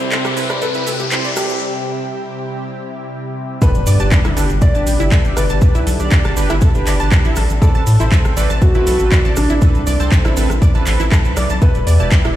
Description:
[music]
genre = progressive house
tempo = 120 BPM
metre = 4/4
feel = straight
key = unclear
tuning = A4 = 440 Hz
[part]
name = dark grand piano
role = melody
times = 0.0-12.4 s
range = D4 to D5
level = -24 LUFS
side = left 1 dB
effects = sidechain pumping, ping-pong delay
[part]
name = lush unison pad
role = sustained chords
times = 0.0-12.4 s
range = B2 to G4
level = -26 LUFS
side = equal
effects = chorus, phaser, sidechain pumping
[part]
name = chorused polysynth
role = stabs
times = 0.0-12.3 s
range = C4 to E5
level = -25 LUFS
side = right 3 dB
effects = sidechain pumping, ping-pong delay
[part]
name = round analog bass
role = bass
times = 0.0-12.3 s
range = E1 to A2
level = -17 LUFS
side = equal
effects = sidechain pumping, high-pass filter
[part]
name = house drum kit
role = drums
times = 0.0-12.3 s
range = handclaps, hi-hat, rim click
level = -24 LUFS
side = equal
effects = studio reverb
[part]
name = tube shaker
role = percussion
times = 0.0-12.3 s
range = none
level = -32 LUFS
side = right 5 dB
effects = none
[part]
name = riser and impact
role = sound effects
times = 0.0-5.6 s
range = none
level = -24 LUFS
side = left 1 dB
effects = none
[part]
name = drifting glass-harmonics texture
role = texture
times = 0.0-1.6 s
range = E5 to E6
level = -41 LUFS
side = left 3 dB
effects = none
[part]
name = wide unison pluck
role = arpeggios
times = 0.1-12.3 s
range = E4 to A6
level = -24 LUFS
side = right 1 dB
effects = vintage 12-bit sampler grit, sidechain pumping, ping-pong delay
[part]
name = electronic kick drum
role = drums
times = 3.6-12.2 s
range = none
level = -12 LUFS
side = equal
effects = studio reverb
[sound]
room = little or no reverb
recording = played on a big sound system in a bare room, stone room reverb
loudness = -12 LUFS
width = side -13 dB against mid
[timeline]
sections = 0.0-3.6 A section; 3.6-12.4 B section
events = build-up 0.0-3.6; riser 0.0-1.6; break 1.6-3.6; drop 3.6-12.4; impact 3.6-5.6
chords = 0.0 C; 3.6 G; 7.6 Amadd9; 11.6 Em

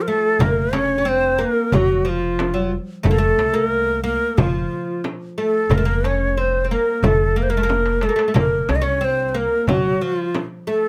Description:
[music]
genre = Arabic maqam ensemble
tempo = 91 BPM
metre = 4/4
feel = straight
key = F maqam hijaz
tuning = A4 = 439 Hz
[part]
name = breathy bright ney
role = melody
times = 0.0-10.9 s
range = F4 to Eb5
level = -22 LUFS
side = equal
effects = none
[part]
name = oud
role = second line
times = 0.0-10.9 s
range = F3 to Db4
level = -26 LUFS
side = equal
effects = none
[part]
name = darbuka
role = percussion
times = 0.1-10.8 s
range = none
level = -27 LUFS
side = equal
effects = none
[part]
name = upright bass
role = bass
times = 0.4-9.9 s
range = F1 to C2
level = -26 LUFS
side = equal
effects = none
[part]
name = frame drum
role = percussion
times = 0.4-10.5 s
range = none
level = -26 LUFS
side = equal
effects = none
[sound]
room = light reverb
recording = none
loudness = -19 LUFS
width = mono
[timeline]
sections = 0.0-10.9 A section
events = drum fill 7.7-8.4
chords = none

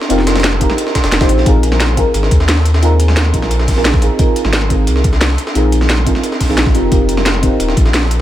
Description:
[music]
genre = liquid drum and bass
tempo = 176 BPM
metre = 4/4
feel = straight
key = unclear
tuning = A4 = 441 Hz
[part]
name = deep mellow chord stab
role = accompaniment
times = 0.0-8.2 s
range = C4 to C5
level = -17 LUFS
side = equal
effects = chorus, phaser, digital delay
[part]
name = breakbeat sampler-style drum kit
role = drums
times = 0.0-8.2 s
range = hi-hat, snare drum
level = -20 LUFS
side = equal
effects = high-pass filter on hats, studio reverb, high-pass filter on snare, high-pass filter on room
[part]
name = warm sub bass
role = bass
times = 0.1-8.2 s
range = Eb1 to Eb2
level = -14 LUFS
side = equal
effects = none
[part]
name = drum and bass drum kit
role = drums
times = 0.1-8.2 s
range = hi-hat, snare drum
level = -19 LUFS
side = equal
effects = studio reverb
[part]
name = electronic kick drum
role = drums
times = 0.6-7.8 s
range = none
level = -15 LUFS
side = equal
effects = studio reverb
[sound]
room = light reverb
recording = none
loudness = -10 LUFS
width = side -12 dB against mid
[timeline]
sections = 0.0-8.2 A section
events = none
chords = 0.0 F9sus4; 1.5 Bb9sus4; 6.7 F9sus4

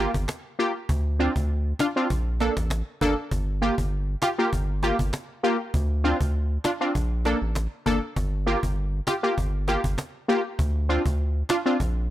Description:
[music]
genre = dancehall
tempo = 99 BPM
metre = 4/4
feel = straight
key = unclear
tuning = A4 = 440 Hz
[part]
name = synth brass stab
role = accompaniment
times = 0.0-11.8 s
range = Bb3 to A4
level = -24 LUFS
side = equal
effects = chorus
[part]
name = round analog bass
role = bass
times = 0.0-12.1 s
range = G1 to D2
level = -25 LUFS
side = equal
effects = none
[part]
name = cajon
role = drums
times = 0.1-11.9 s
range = none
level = -30 LUFS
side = equal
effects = none
[sound]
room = little or no reverb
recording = dry, gritty hardware recording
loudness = -23 LUFS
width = side -13 dB against mid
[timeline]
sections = 0.0-12.1 A section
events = none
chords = 0.0 Gm7; 0.9 Dm7; 2.1 Bbmaj7; 3.3 Gm7; 5.7 Dm7; 7.0 Bbmaj7; 8.2 Gm7; 10.6 Dm7

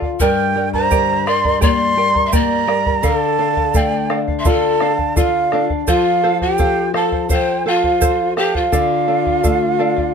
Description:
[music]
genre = andean folk, Andean ensemble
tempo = 84 BPM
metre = 4/4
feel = straight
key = D minor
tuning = A4 = 442 Hz
[part]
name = charango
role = accompaniment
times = 0.0-10.1 s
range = G4 to Bb5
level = -22 LUFS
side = right 4 dB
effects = none
[part]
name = nylon-string guitar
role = accompaniment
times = 0.0-10.1 s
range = G2 to C5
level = -22 LUFS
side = left 6 dB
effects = none
[part]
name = bombo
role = percussion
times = 0.0-10.1 s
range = none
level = -20 LUFS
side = equal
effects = none
[part]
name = breathy bright large quena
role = melody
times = 0.2-10.1 s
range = F5 to C6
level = -18 LUFS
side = right 4 dB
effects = none
[part]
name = breathy mellow pan flute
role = second line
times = 0.2-10.1 s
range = F4 to E5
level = -21 LUFS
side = left 4 dB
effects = none
[part]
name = egg shaker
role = percussion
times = 0.2-9.6 s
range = none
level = -28 LUFS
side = right 6 dB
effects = none
[sound]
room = moderate studio reverb, RT60 0.5 s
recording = dark, warm production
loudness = -14 LUFS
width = side -6 dB against mid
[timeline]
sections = 0.0-10.1 A section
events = none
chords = 0.2 Gm; 3.0 Dm; 5.9 F; 8.7 Dm

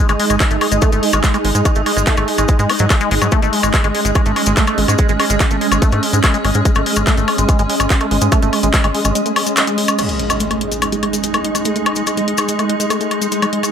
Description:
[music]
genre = psychedelic trance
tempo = 144 BPM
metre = 4/4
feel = straight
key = unclear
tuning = A4 = 440 Hz
[part]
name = swarming drone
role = sustained chords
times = 0.1-13.7 s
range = G#3 to D#4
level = -21 LUFS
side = right 1 dB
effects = built-in reverb, sidechain pumping
[part]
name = liquid acid bass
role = riff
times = 0.0-13.7 s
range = F#3 to D#4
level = -21 LUFS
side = moving between left 7 dB and right 7 dB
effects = phaser, auto-pan, sidechain pumping, ping-pong delay
[part]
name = ethereal airy pad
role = texture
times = 0.0-13.7 s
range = G#3 to D#6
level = -22 LUFS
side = right 2 dB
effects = ensemble chorus, built-in reverb, sidechain pumping
[part]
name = tight sequencer bass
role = bass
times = 0.1-9.1 s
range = G#1 to G#2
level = -18 LUFS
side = equal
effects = none
[part]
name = drum and bass drum kit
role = drums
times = 0.1-13.7 s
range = crash cymbal, handclaps, hi-hat, woodblock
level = -19 LUFS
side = left 2 dB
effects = overdrive
[part]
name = maracas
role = percussion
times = 0.1-13.7 s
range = none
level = -26 LUFS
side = left 5 dB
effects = none
[part]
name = electronic kick drum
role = drums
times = 0.4-8.8 s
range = none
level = -14 LUFS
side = equal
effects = overdrive
[part]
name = impact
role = sound effects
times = 10.0-11.7 s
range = none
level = -28 LUFS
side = equal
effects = none
[sound]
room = light reverb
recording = none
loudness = -13 LUFS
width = side -8 dB against mid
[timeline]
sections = 0.0-10.0 A section; 10.0-13.7 B section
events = impact 10.0-11.7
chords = 0.0 G#5

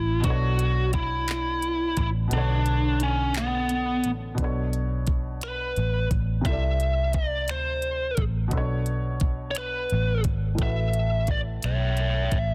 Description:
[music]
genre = slow six-eight R&B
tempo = 58 BPM (dotted quarters)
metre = 6/8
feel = straight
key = B minor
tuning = A4 = 442 Hz
[part]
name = biting lead guitar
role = melody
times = 0.0-12.5 s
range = B3 to E5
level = -30 LUFS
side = equal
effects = overdrive, tape echo
[part]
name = warm baby grand piano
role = accompaniment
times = 0.0-12.5 s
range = A2 to E5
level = -36 LUFS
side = equal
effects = none
[part]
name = vintage muted fingered electric bass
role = bass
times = 0.0-12.5 s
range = G#1 to D2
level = -29 LUFS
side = equal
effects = none
[part]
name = smooth R&B drum kit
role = drums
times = 0.2-12.5 s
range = finger snaps, handclaps, hi-hat, kick drum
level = -29 LUFS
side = equal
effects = soft clipping on snare
[sound]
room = little or no reverb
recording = dense, heavily limited modern master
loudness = -26 LUFS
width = mono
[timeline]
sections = 0.0-4.4 A section; 4.4-12.5 B section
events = kick muted 2.3-4.4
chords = 0.2 Bm9; 6.5 C69; 8.5 Bm7; 10.6 A6

